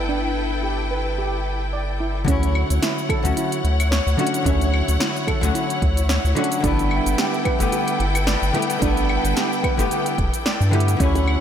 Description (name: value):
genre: sunset chillout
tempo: 110 BPM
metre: 4/4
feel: swing 56% on 16ths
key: unclear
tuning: A4 = 440 Hz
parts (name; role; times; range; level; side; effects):
- hollow-body jazz guitar; accompaniment; 0.0-11.4 s; D3 to C#5; -25 LUFS; moving between left 5 dB and right 2 dB; auto-pan, ping-pong delay, slapback echo
- clear symphonic string section; sustained chords; 0.0-11.4 s; E4 to G5; -26 LUFS; left 2 dB; none
- steel pan; arpeggios; 0.0-11.3 s; C#4 to D5; -26 LUFS; right 4 dB; ping-pong delay, slapback echo
- round analog bass; bass; 0.0-11.4 s; E1 to G2; -21 LUFS; equal; none
- deep house drum kit; drums; 2.3-11.4 s; claves, hi-hat, shaker, snare drum; -26 LUFS; equal; none
- electronic kick drum; drums; 2.3-11.1 s; none; -24 LUFS; equal; none
- bongos; percussion; 11.2-11.3 s; none; barely audible; none; none
room: moderate lush hall reverb, RT60 1.7 s, digital ambience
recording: big arena sound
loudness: -18 LUFS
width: side -9 dB against mid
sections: 0.0-2.3 A section; 2.3-11.4 B section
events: filter sweep on steel pan 0.0-2.3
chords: 0.0 G69; 2.3 Dmaj9; 6.6 G69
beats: | 0.10 0.64 1.19 1.73 | 2.28 2.82 3.37 3.91 | 4.46 5.00 5.55 6.09 | 6.64 7.19 7.73 8.28 | 8.82 9.37 9.91 10.46 | 11.00